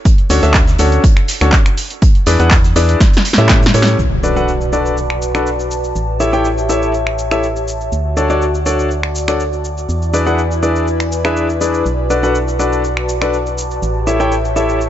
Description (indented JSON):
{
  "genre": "piano house",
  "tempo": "122 BPM",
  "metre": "4/4",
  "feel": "straight",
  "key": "B minor",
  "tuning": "A4 = 440 Hz",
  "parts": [
    { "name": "electronic kick drum", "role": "drums", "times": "0.1-3.6 s", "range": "none", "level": "-11 LUFS", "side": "equal", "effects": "none" },
    { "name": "loose indie drum kit", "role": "drums", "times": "0.1-3.9 s", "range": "hi-hat, snare drum", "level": "-29 LUFS", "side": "right 3 dB", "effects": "none" },
    { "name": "punchy analog drum machine", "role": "drums", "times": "0.1-14.9 s", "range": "finger snaps, handclaps, hi-hat, shaker, snare drum", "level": "-19 LUFS", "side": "equal", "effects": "none" },
    { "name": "warm concert grand piano", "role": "riff", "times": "0.3-14.8 s", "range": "C#4 to G5", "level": "-17 LUFS", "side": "left 2 dB", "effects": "sidechain pumping, ping-pong delay" },
    { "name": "organ-like FM bass", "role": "bass", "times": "0.3-14.9 s", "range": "A1 to A2", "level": "-18 LUFS", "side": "equal", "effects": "sidechain pumping" },
    { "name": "impact", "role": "sound effects", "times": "4.0-6.0 s", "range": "none", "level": "-23 LUFS", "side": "equal", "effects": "none" },
    { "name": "airy breathy pad", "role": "texture", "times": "4.0-14.9 s", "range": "E4 to A5", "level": "-21 LUFS", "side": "equal", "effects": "chorus, sidechain pumping" }
  ],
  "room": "light reverb",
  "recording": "nothing above 7.9 kHz",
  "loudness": "-12 LUFS",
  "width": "side -11 dB against mid",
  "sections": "0.0-4.0 A section; 4.0-14.9 B section",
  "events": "drum fill 3.0-4.0; impact 4.0-6.0",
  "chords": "0.1 Dmaj7; 2.0 E7; 3.0 A7; 4.0 Bm7; 6.0 A7; 7.9 Dmaj7; 9.9 E7; 11.9 Bm7; 13.8 A7"
}